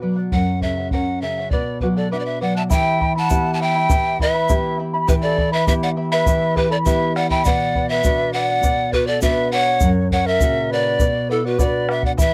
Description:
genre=andean folk, Andean ensemble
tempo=101 BPM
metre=2/4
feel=straight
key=B minor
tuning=A4 = 436 Hz
part: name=charango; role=accompaniment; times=0.0-12.3 s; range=E4 to B5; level=-29 LUFS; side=equal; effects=none
part: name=nylon-string guitar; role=accompaniment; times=0.0-12.3 s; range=F#2 to G4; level=-25 LUFS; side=equal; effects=none
part: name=breathy bright pan flute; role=melody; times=0.3-12.3 s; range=A4 to A5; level=-23 LUFS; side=equal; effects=none
part: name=bombo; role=percussion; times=0.3-12.3 s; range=none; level=-23 LUFS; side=equal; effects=none
part: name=bright large quena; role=second line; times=1.8-12.3 s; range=E4 to F#5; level=-28 LUFS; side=equal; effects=none
part: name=egg shaker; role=percussion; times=2.7-12.3 s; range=none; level=-35 LUFS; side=equal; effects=none
room=light reverb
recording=dry, close 1970s-style studio recording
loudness=-19 LUFS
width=mono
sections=0.0-2.7 A section; 2.7-12.2 B section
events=none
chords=0.3 F#; 1.5 Bm; 2.7 Em; 7.5 Bm; 9.8 F#; 11.0 Bm

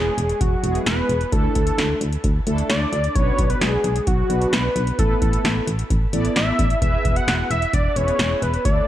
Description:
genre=synth-pop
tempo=131 BPM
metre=4/4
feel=straight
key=unclear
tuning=A4 = 440 Hz
part: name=wide unison lead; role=melody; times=0.0-8.9 s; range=F#4 to F#5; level=-23 LUFS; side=equal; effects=shimmer reverb
part: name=mellow synth brass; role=accompaniment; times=0.0-8.9 s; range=G#3 to D5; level=-28 LUFS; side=equal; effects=chorus, phaser, shimmer reverb
part: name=solid FM bass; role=bass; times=0.0-8.8 s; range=E1 to D2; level=-23 LUFS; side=equal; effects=none
part: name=electro analog drum machine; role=drums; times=0.2-8.8 s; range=hi-hat, kick drum, snare drum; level=-22 LUFS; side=equal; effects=none
room=light reverb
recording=none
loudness=-18 LUFS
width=side -12 dB against mid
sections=0.0-8.9 A section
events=none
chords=0.0 Eadd9; 1.3 Dsus2; 3.2 Bm; 5.0 Asus2; 6.8 E

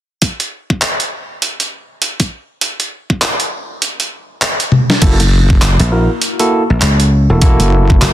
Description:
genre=glitch hop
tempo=100 BPM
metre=4/4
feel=swing 60% on 16ths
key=unclear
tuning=A4 = 440 Hz
part: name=boom bap sampler-style drum kit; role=drums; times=0.2-8.1 s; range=crash cymbal, handclaps, hi-hat, snare drum, toms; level=-15 LUFS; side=equal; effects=none
part: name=electronic kick drum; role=drums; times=0.2-8.0 s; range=none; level=-11 LUFS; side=equal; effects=high-pass filter on kick
part: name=barky tine electric piano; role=stabs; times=5.0-8.1 s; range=A#3 to A#4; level=-16 LUFS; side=right 1 dB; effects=sidechain pumping, ping-pong delay
part: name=wobble bass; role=bass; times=5.0-8.0 s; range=F#1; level=-11 LUFS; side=equal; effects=chorus, tube saturation
part: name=dry thumbed slap bass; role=bass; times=5.8-8.1 s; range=E1 to C#2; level=-11 LUFS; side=equal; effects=none
room=little or no reverb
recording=dense, heavily limited modern master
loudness=-11 LUFS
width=side -13 dB against mid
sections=0.2-5.0 A section; 5.0-8.1 B section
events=kick drops out 3.8-5.0; drum fill 4.7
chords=0.2 N.C.; 5.0 F#7#9

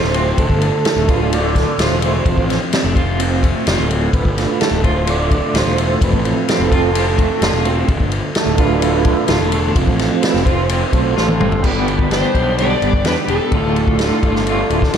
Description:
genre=psychedelic rock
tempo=128 BPM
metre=4/4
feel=straight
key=D dorian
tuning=A4 = 441 Hz
part: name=combo organ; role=sustained chords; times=0.0-15.0 s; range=A3 to B5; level=-21 LUFS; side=right 6 dB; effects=none
part: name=clean electric guitar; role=riff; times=0.0-15.0 s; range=D2 to G4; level=-20 LUFS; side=equal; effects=tremolo, double-tracked left and right
part: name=fuzz picked electric bass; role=bass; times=0.0-15.0 s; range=D1 to E2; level=-19 LUFS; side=left 1 dB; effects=overdrive
part: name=tanpura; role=drone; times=0.0-15.0 s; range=D2 to D3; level=-29 LUFS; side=equal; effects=none
part: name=vintage drum kit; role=drums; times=0.0-15.0 s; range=crash cymbal, kick drum, ride cymbal, snare drum, toms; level=-18 LUFS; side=left 1 dB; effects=none
part: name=overdriven slide guitar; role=melody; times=12.1-14.9 s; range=A4 to D5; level=-20 LUFS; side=left 2 dB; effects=wide subtle chorus, analog delay
room=moderate plate reverb, RT60 1.5 s, studio reverb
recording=dreamy mix soaked in reverb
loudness=-13 LUFS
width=side -8 dB against mid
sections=0.0-11.6 A section; 11.6-15.0 B section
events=transistor combo organ solo 0.0-11.6; drum fill 11.2-11.6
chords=0.4 Dm; 2.3 F; 4.1 Dm; 6.0 F; 7.9 Dm; 9.8 F; 11.6 G; 13.5 Dm

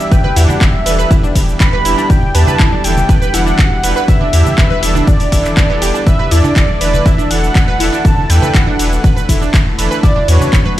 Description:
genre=progressive house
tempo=121 BPM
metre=4/4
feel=straight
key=E minor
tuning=A4 = 440 Hz
part: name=wide unison lead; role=melody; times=0.0-10.8 s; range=C#5 to B5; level=-19 LUFS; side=equal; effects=sidechain pumping, ping-pong delay
part: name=warm analog pad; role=sustained chords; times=0.0-10.8 s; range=D3 to A4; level=-22 LUFS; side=left 1 dB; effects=chorus, sidechain pumping
part: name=house drum kit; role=drums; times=0.0-10.6 s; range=handclaps, hi-hat, ride cymbal, shaker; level=-20 LUFS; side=left 1 dB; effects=none
part: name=analog pluck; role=arpeggios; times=0.1-10.8 s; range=B3 to B4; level=-20 LUFS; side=right 3 dB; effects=chorus, sidechain pumping, ping-pong delay
part: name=round analog bass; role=bass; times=0.1-10.8 s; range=E1 to E2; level=-16 LUFS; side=equal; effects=sidechain pumping
part: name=electronic kick drum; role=drums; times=0.1-10.6 s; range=none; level=-11 LUFS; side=equal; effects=none
part: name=congas and woodblock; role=percussion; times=0.2-10.8 s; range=none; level=-21 LUFS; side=right 1 dB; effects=sidechain pumping on perc
part: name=soft supersaw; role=stabs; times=0.4-10.8 s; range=E3 to B4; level=-22 LUFS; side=right 2 dB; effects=sidechain pumping, ping-pong delay
room=light reverb, digital ambience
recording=played on a big sound system in a bare room, large studio reverb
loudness=-9 LUFS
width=side -14 dB against mid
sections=0.0-10.8 A section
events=none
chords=0.0 Em7; 6.1 Asus4/E; 10.0 D6/E

